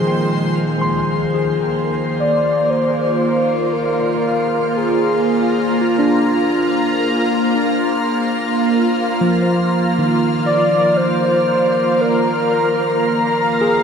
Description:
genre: ambient.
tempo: 58 BPM.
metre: 4/4.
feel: straight.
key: Bb mixolydian.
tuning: A4 = 440 Hz.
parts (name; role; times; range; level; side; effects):
evolving wavetable pad; sustained chords; 0.0-13.8 s; Bb2 to Bb5; -18 LUFS; right 1 dB; phaser, built-in reverb.
tine electric piano; arpeggios; 0.0-13.8 s; Eb3 to C6; -21 LUFS; left 1 dB; ping-pong delay.
rich chamber violin section; texture; 0.0-13.8 s; C6 to F6; -30 LUFS; left 1 dB; none.
warm velvety synth lead; melody; 2.2-13.8 s; F4 to D5; -18 LUFS; equal; chorus, ping-pong delay.
room: wet shimmer reverb, RT60 8.0 s.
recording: none.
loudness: -14 LUFS.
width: side -6 dB against mid.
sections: 0.6-13.8 A section.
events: fade-in on violin section 0.6-13.8.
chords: 0.0 Ab/Bb; 0.6 Bb7sus4.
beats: | 0.63 1.67 2.70 3.74 | 4.77 5.81 6.84 7.88 | 8.91 9.95 10.98 12.01 | 13.05.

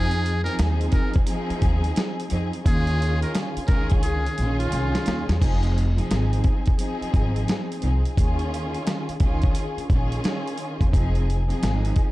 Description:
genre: hip hop, boom-bap hip-hop.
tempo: 87 BPM.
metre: 4/4.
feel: swing 63% on 16ths.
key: F minor.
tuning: A4 = 440 Hz.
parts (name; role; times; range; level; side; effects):
trumpet with metal mute; melody; 0.0-5.4 s; F4 to Bb4; -31 LUFS; equal; ping-pong delay.
warm studio string section; accompaniment; 0.0-12.1 s; Eb3 to Ab4; -28 LUFS; equal; cassette tape.
upright bass; bass; 0.0-11.9 s; F1 to F2; -24 LUFS; equal; none.
dusty soul sampler-style drum kit; drums; 0.1-12.1 s; crash cymbal, hi-hat, kick drum, snare drum; -23 LUFS; equal; none.
room: small room ambience.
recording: dark, warm production.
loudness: -20 LUFS.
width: side -18 dB against mid.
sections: 0.0-5.4 A section; 5.4-12.1 B section.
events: drum fill 4.0-5.4.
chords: 0.0 Fm7; 2.7 Eb9sus4; 5.4 Fm7; 8.2 Eb9sus4; 10.9 Fm7.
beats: 0.59 1.28 1.97 | 2.66 3.35 4.04 4.73 | 5.42 6.11 6.80 7.49 | 8.18 8.87 9.55 10.24 | 10.93 11.62.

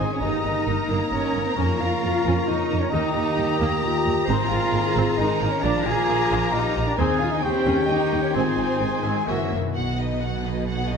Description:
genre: cinematic.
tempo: 133 BPM.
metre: 3/4.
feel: straight.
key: Ab major.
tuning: A4 = 440 Hz.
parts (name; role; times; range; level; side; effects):
rich chamber violin section; melody; 0.0-11.0 s; D#5 to Bb5; -30 LUFS; left 5 dB; none.
clear oboe; second line; 0.0-9.5 s; Fb5 to C6; -35 LUFS; right 1 dB; none.
mellow silver concert flute; second line; 0.0-9.3 s; C6 to Eb6; -33 LUFS; left 2 dB; none.
rich studio violin section; second line; 0.0-11.0 s; Eb4 to C5; -35 LUFS; left 3 dB; none.
warm clarinet; second line; 0.0-9.8 s; Ab4 to Ab5; -31 LUFS; left 2 dB; none.
warm symphonic viola section; accompaniment; 0.0-11.0 s; Eb3 to Eb4; -32 LUFS; right 2 dB; none.
mellow French horn section; sustained chords; 0.0-9.9 s; F#3 to Ab4; -30 LUFS; left 8 dB; none.
warm trombone section; sustained chords; 0.0-9.5 s; Db3 to F4; -33 LUFS; right 4 dB; none.
concert harp; arpeggios; 0.0-11.0 s; F2 to D6; -31 LUFS; left 9 dB; none.
mellow trumpet section; stabs; 0.0-9.5 s; Gb4 to Bb4; -29 LUFS; right 3 dB; none.
rich symphonic double bass section; bass; 0.0-11.0 s; Gb1 to F2; -28 LUFS; right 4 dB; none.
warm symphonic cello section; bass; 0.0-11.0 s; B2 to Ab4; -28 LUFS; right 3 dB; none.
room: moderate concert hall reverb, RT60 2.0 s.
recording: none.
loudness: -20 LUFS.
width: side -6 dB against mid.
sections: 0.0-9.8 A section; 9.8-11.0 B section.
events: none.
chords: 0.2 Eb/G; 1.6 Bbm/F; 2.9 Eb; 4.3 Abadd9; 5.6 Bb; 7.0 Ab/Eb; 7.4 Eb7; 8.3 Ab; 9.3 Gb7; 9.8 B.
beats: | 0.22 0.67 1.12 | 1.57 2.03 2.48 | 2.93 3.38 3.83 | 4.27 4.72 5.18 | 5.63 6.09 6.54 | 6.99 7.43 7.89 | 8.34 8.81 9.28 | 9.75 10.21 10.66.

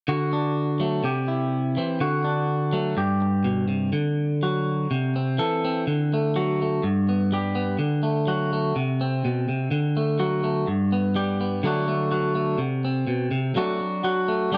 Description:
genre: highlife.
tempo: 125 BPM.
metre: 4/4.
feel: straight.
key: D mixolydian.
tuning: A4 = 441 Hz.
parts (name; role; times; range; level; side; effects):
clean electric guitar; solo; 0.1-14.6 s; G2 to A4; -24 LUFS; equal; none.
room: moderate spring reverb, RT60 2.5 s.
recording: none.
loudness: -24 LUFS.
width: mono.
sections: 0.1-3.9 A section; 3.9-14.6 B section.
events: none.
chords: 0.1 D; 1.0 C; 2.0 D; 3.0 G; 3.9 D; 4.9 C; 5.9 D; 6.8 G; 7.8 D; 8.7 N.C.; 9.7 D; 10.7 G; 11.6 D; 12.6 N.C.; 13.6 D.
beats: | 0.07 0.56 1.04 1.52 | 2.00 2.48 2.97 3.45 | 3.93 4.41 4.89 5.38 | 5.86 6.34 6.82 7.30 | 7.78 8.26 8.74 9.23 | 9.71 10.19 10.67 11.15 | 11.63 12.12 12.60 13.08 | 13.56 14.04 14.52.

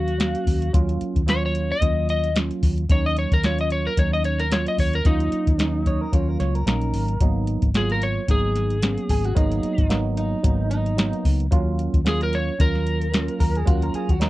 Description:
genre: straight-eighth soul blues.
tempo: 111 BPM.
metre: 4/4.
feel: swing 55% on 16ths.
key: Eb minor.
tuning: A4 = 440 Hz.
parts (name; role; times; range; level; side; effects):
electric slide guitar; melody; 0.0-14.2 s; Eb4 to Eb5; -26 LUFS; left 1 dB; none.
tine electric piano; accompaniment; 0.0-14.3 s; Gb3 to F5; -27 LUFS; right 3 dB; analog chorus.
vintage muted fingered electric bass; bass; 0.0-14.3 s; Ab1 to Eb2; -24 LUFS; equal; none.
soft vintage rhythm box; drums; 0.1-14.3 s; hi-hat, kick drum, snare drum; -21 LUFS; equal; none.
electric guitar through a small old amp; second line; 5.9-14.3 s; Eb4 to Db5; -29 LUFS; equal; none.
room: little or no reverb.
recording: dry, close 1970s-style studio recording.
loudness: -19 LUFS.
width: side -17 dB against mid.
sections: 0.0-14.3 A section.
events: none.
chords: 0.0 Ebm9; 7.2 Abm9; 11.5 Ebm9.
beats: 0.20 | 0.74 1.28 1.81 2.35 | 2.89 3.43 3.97 4.51 | 5.05 5.59 6.13 6.67 | 7.21 7.75 8.28 8.82 | 9.36 9.90 10.44 10.98 | 11.52 12.05 12.59 13.13 | 13.67 14.21.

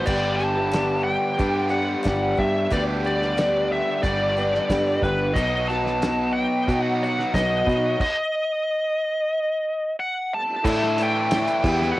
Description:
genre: folk rock and heartland rock.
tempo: 91 BPM.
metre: 4/4.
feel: straight.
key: unclear.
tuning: A4 = 440 Hz.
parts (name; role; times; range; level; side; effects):
biting lead guitar; melody; 0.0-12.0 s; B4 to A5; -24 LUFS; equal; overdrive.
picked acoustic archtop guitar; accompaniment; 0.0-12.0 s; E2 to G4; -27 LUFS; left 2 dB; none.
bright tonewheel organ; sustained chords; 0.0-12.0 s; none; barely audible; none; none.
raw garage guitar; riff; 0.0-12.0 s; E2 to G4; -27 LUFS; right 1 dB; overdrive.
barky reed electric piano; accompaniment; 0.1-12.0 s; F#3 to E5; -35 LUFS; right 3 dB; none.
picked electric bass; bass; 0.1-11.9 s; G1 to B2; -27 LUFS; equal; none.
cloth-damped thuddy drum kit; drums; 0.1-11.9 s; crash cymbal, hi-hat, kick drum, snare drum; -27 LUFS; equal; cassette tape.
room: light reverb.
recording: home recording on cassette.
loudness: -20 LUFS.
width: side -17 dB against mid.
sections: 0.1-10.7 A section; 10.7-12.0 B section.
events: stop 8.0-10.7.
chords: 0.1 G; 5.4 B; 10.7 Asus4.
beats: | 0.08 0.74 1.40 2.06 | 2.73 3.39 4.05 4.71 | 5.37 6.03 6.69 7.35 | 8.01 8.67 9.33 9.99 | 10.66 11.32 11.98.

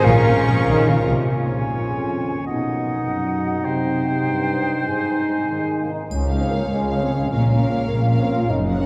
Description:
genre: cinematic, heroic adventure film score.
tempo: 100 BPM (dotted quarters).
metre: 6/8.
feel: straight.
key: Bb minor.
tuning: A4 = 440 Hz.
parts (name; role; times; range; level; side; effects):
warm symphonic violin section; melody; 0.0-1.1, 6.3-8.9 s; F4 to Gb5; -33 LUFS; equal; none.
bright oboe; second line; 0.0-5.9 s; Db4 to D#5; -32 LUFS; equal; none.
hollow concert flute; second line; 0.0-5.9 s; F5 to Ab5; -30 LUFS; equal; none.
rich chamber violin section; second line; 0.0-1.1, 6.3-8.9 s; Db5 to Db6; -34 LUFS; equal; none.
rich symphonic viola section; accompaniment; 0.0-1.1, 6.3-8.9 s; Db3 to Bb4; -33 LUFS; equal; none.
mellow French horn section; sustained chords; 0.0-1.0, 5.5-8.9 s; Ab3 to Bb4; -28 LUFS; equal; none.
warm trombone section; sustained chords; 0.0-6.0 s; F2 to Db4; -31 LUFS; equal; none.
concert harp; arpeggios; 0.0-8.9 s; Gb2 to Bb5; -32 LUFS; equal; none.
clear trumpet; stabs; 0.0-1.1 s; Bb4; -32 LUFS; equal; none.
warm symphonic double bass section; bass; 0.0-1.2, 6.1-8.9 s; Gb1 to Db2; -26 LUFS; equal; none.
warm symphonic cello section; bass; 0.1-1.3, 6.1-8.9 s; Db2 to Eb3; -24 LUFS; equal; none.
clear clarinet; second line; 1.3-5.9 s; D#4 to F4; -29 LUFS; equal; none.
triangle; percussion; 6.1-6.9 s; none; -46 LUFS; equal; none.
room: wet cathedral reverb, RT60 4.9 s.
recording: recorded in a church or concert hall.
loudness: -20 LUFS.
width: mono.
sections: 0.0-1.3 A section; 1.3-6.1 B section; 6.1-8.9 C section.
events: none.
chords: 0.1 Bbm; 1.3 Bbm7; 2.5 B; 3.7 Cm; 4.9 Ab; 6.1 Db; 7.3 Bbm.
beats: | 0.05 0.66 | 1.28 1.88 | 2.47 3.06 | 3.65 4.26 | 4.87 5.49 | 6.11 6.71 | 7.31 7.92 | 8.51.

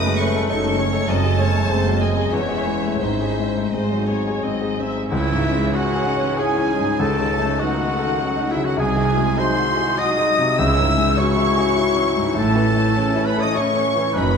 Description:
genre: classical, romantic movement for piano and orchestra.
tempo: 83-106 BPM.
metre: 3/4.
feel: rubato.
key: C# minor.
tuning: A4 = 439 Hz.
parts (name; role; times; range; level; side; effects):
clear grand piano; melody; 0.0-14.4 s; B#1 to A4; -21 LUFS; left 2 dB; none.
rich symphonic violin section; melody; 0.0-14.4 s; D#5 to E6; -30 LUFS; left 2 dB; none.
mellow clarinet; second line; 0.0-14.4 s; D#4 to E5; -27 LUFS; left 1 dB; none.
warm symphonic violin section; second line; 0.0-14.4 s; G#3 to E6; -30 LUFS; left 2 dB; none.
rich symphonic viola section; accompaniment; 0.0-14.4 s; B#2 to E5; -28 LUFS; right 1 dB; none.
dark French horn section; sustained chords; 0.0-14.4 s; G#3 to F#4; -27 LUFS; left 4 dB; none.
rich symphonic cello section; bass; 0.0-14.4 s; E2 to C#3; -27 LUFS; right 5 dB; none.
rich symphonic double bass section; bass; 0.0-14.4 s; E1 to C#2; -27 LUFS; right 5 dB; none.
mellow small flute group; second line; 5.1-14.4 s; E5 to E6; -26 LUFS; right 1 dB; none.
warm oboe; second line; 5.1-14.4 s; E4 to E5; -28 LUFS; right 3 dB; none.
room: moderate scoring stage reverb, RT60 1.7 s.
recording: none.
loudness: -17 LUFS.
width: side -6 dB against mid.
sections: 0.0-5.1 A section; 5.1-14.4 B section.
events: none.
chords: 0.0 D#m7b5/F#; 1.1 G#7/F#; 2.3 C#m/E; 3.0 G#; 5.1 C#m; 7.0 D#m7b5/C#; 8.8 G#7/B#; 10.6 C#m; 12.4 A.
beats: 0.49 | 1.09 1.69 2.32 | 3.01 3.73 4.44 | 5.12 5.75 6.39 | 7.01 7.61 8.21 | 8.79 9.38 9.98 | 10.58 11.18 11.78 | 12.37 12.96 13.57 | 14.17.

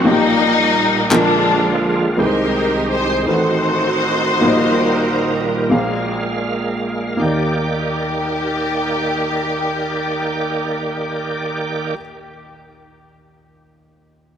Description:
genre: slow gospel.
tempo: 36-56 BPM (dotted quarters).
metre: 6/8.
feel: straight.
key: Eb major.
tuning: A4 = 440 Hz.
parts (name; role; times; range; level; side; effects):
rich studio string section; melody; 0.0-12.0 s; F3 to C5; -20 LUFS; left 2 dB; tape echo.
dark upright piano; accompaniment; 0.0-14.4 s; A1 to F5; -20 LUFS; left 1 dB; none.
bright tonewheel organ; sustained chords; 0.0-11.9 s; C2 to F5; -20 LUFS; right 2 dB; fast rotary speaker, overdrive, chorus vibrato.
group handclap; percussion; 1.1-1.4 s; none; -18 LUFS; left 2 dB; none.
room: moderate plate reverb, RT60 3.5 s.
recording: none.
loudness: -15 LUFS.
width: side -8 dB against mid.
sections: 0.0-2.2 A section; 2.2-7.2 B section; 7.2-13.8 C section.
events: slowing down 2.2-7.2.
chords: 0.1 Eb/Bb; 1.1 Bb7; 2.2 Abmaj7/C; 3.3 Adim7; 4.4 Eb/Bb; 5.7 Bb7; 7.2 Ebmaj7.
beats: | 0.05 1.12 | 2.18 3.27 | 4.42 5.71 | 7.21 8.85 | 10.49 12.13.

